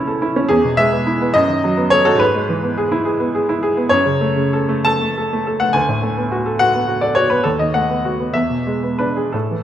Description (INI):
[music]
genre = classical, romantic character piece for solo piano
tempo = 57-71 BPM (dotted quarters)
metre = 6/8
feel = rubato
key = unclear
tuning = A4 = 440 Hz
[part]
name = bright baby grand piano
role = solo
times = 0.0-9.6 s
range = C#2 to A5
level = -15 LUFS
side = equal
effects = none
[sound]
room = moderate recital hall reverb, RT60 1.6 s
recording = none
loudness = -15 LUFS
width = side -10 dB against mid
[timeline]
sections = 0.0-9.6 A section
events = none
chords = 0.5 E; 1.4 B7/F#; 2.2 E/G#; 3.9 F#m; 5.7 Bm7/D; 7.4 B7/D#; 8.3 E7